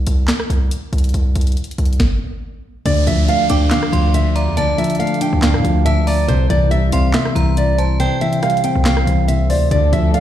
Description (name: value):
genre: hip hop, trap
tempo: 140 BPM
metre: 4/4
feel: half-time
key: D minor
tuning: A4 = 440 Hz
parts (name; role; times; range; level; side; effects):
- distorted 808-style bass; bass; 0.0-10.1 s; C2 to A2; -16 LUFS; equal; distortion
- trap drum kit; drums; 0.1-10.2 s; handclaps, hi-hat, kick drum, rim click, snare drum; -22 LUFS; equal; none
- nylon-string guitar; melody; 2.9-10.2 s; C5 to G5; -20 LUFS; right 3 dB; digital delay
- soft electric-piano-like synth keys; accompaniment; 2.9-10.2 s; C3 to D5; -19 LUFS; left 3 dB; chorus
- downlifter; sound effects; 2.9-6.3 s; none; -30 LUFS; right 2 dB; none
- metallic FM bell; second line; 3.5-9.2 s; G5 to D6; -27 LUFS; right 2 dB; chorus, digital delay
- dark studio string section; sustained chords; 9.7-10.2 s; F3 to A4; -24 LUFS; right 1 dB; none
room: light reverb, digital ambience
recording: played on a big sound system in a bare room, large studio reverb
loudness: -14 LUFS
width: side -11 dB against mid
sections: 0.0-2.9 A section; 2.9-10.2 B section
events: break 0.0-2.9; stop 2.0-2.9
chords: 0.0 N.C.; 2.9 Dm; 6.3 C